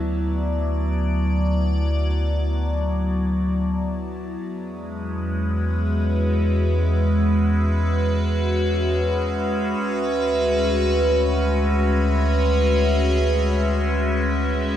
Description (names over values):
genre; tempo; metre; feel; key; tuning
ambient; free time; none; none; D lydian; A4 = 440 Hz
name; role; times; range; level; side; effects
evolving wavetable pad; sustained chords; 0.0-14.8 s; F#3 to A5; -22 LUFS; equal; phaser, built-in reverb, shimmer reverb
felt-muted upright piano; arpeggios; 0.0-2.0 s; D5; -52 LUFS; left 3 dB; none
warm sub bass; bass; 0.0-14.8 s; D2 to E2; -22 LUFS; equal; none
room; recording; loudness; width
wet cathedral reverb, RT60 6.2 s; in a vast, echoing space, cassette tape; -19 LUFS; side -10 dB against mid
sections
0.0-14.8 A section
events
none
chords
0.0 D6; 4.4 E; 9.8 D6